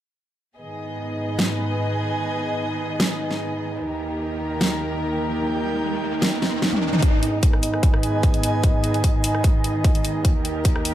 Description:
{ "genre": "heavy wobble dubstep", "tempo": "149 BPM", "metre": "4/4", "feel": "half-time", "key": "G# harmonic minor", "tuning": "A4 = 443 Hz", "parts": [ { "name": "dark studio string section", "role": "sustained chords", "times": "0.6-10.9 s", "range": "D#2 to D#5", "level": "-26 LUFS", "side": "left 1 dB", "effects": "sidechain pumping, low-pass filter" }, { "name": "airy breathy pad", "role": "texture", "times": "0.6-10.9 s", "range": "D#4 to G#5", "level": "-27 LUFS", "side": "right 4 dB", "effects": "chorus, sidechain pumping" }, { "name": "dubstep drum kit", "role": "drums", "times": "1.4-10.9 s", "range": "hi-hat, rim click, snare drum, toms", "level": "-24 LUFS", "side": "equal", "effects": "high-pass filter on snare, small room reverb, high-pass filter on toms, high-pass filter on hats" }, { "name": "riser", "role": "sound effects", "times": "5.2-7.0 s", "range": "none", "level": "-29 LUFS", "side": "left 1 dB", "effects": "none" }, { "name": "electronic kick drum", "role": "drums", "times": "7.0-10.7 s", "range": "none", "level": "-18 LUFS", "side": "equal", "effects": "overdrive, small room reverb" } ], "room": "light reverb", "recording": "none", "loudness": "-20 LUFS", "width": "side -12 dB against mid", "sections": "0.6-7.0 A section; 7.0-10.9 B section", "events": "riser 5.2-7.0; drum fill 6.4-7.0; build-up 7.0-10.9; filter sweep on string section 7.0-10.9", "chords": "0.6 G#m; 3.8 D#; 7.0 G#m; 10.2 D#" }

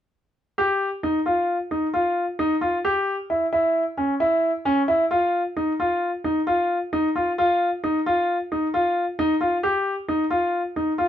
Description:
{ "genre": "contemporary instrumental, contemporary", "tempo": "132 BPM", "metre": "5/4", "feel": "straight", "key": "unclear", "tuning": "A4 = 440 Hz", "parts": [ { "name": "bright grand piano", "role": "solo", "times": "0.6-11.1 s", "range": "C#4 to G4", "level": "-20 LUFS", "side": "equal", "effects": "none" } ], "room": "moderate studio reverb, RT60 0.5 s", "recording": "dark, warm production", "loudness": "-20 LUFS", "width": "side -10 dB against mid", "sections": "0.6-11.1 A section", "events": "none", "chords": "none" }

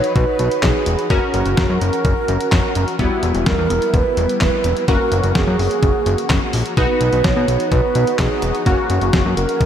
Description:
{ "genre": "synth-pop", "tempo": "127 BPM", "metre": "4/4", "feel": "straight", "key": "B major", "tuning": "A4 = 440 Hz", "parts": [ { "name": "bright reedy wooden-headed alto flute", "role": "melody", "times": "0.0-9.7 s", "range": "F#4 to C#5", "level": "-20 LUFS", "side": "right 3 dB", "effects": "analog delay" }, { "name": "funky polysynth comp", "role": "accompaniment", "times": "0.0-9.7 s", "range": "G3 to B4", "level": "-22 LUFS", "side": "left 2 dB", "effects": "chorus" }, { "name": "detuned 8-bit digital drum machine", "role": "drums", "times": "0.0-9.7 s", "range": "handclaps, hi-hat, kick drum, snare drum", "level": "-20 LUFS", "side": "left 1 dB", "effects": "none" }, { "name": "fat analog bass", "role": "bass", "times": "0.2-9.7 s", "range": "E1 to B2", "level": "-19 LUFS", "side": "left 1 dB", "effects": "none" } ], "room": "moderate cathedral reverb, RT60 6.0 s", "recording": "dreamy mix soaked in reverb", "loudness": "-14 LUFS", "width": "side -9 dB against mid", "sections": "0.0-9.7 A section", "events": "none", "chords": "0.0 B; 1.1 F#; 3.0 Emadd9; 4.9 F#add9; 6.8 Badd9; 8.7 F#" }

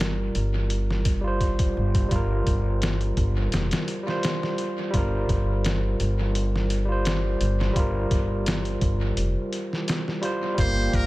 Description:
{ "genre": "trip hop", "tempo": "85 BPM", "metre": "4/4", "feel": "swing 53% on 16ths", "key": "G minor", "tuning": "A4 = 438 Hz", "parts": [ { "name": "overdriven tine electric piano", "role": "accompaniment", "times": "0.0-11.1 s", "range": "G3 to C5", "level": "-28 LUFS", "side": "right 1 dB", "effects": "tremolo, dub echo" }, { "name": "upright bass", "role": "bass", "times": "0.0-11.1 s", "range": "F1 to G1", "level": "-25 LUFS", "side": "equal", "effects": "none" }, { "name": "trip hop sampler-style drum kit", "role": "drums", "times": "0.0-11.1 s", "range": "hi-hat, kick drum, snare drum", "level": "-27 LUFS", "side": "equal", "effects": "studio reverb, dub echo" }, { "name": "trumpet with metal mute", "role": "melody", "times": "10.6-11.1 s", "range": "Bb4 to C5", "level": "-27 LUFS", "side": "right 1 dB", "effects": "none" }, { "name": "dark analog pad", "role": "sustained chords", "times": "10.6-11.1 s", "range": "Bb3 to D6", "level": "-32 LUFS", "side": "right 1 dB", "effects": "chorus, vintage 12-bit sampler grit" } ], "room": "digital ambience", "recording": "echo-heavy mix", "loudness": "-22 LUFS", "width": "side -18 dB against mid", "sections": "0.0-11.1 A section", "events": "none", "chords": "0.0 Gm7" }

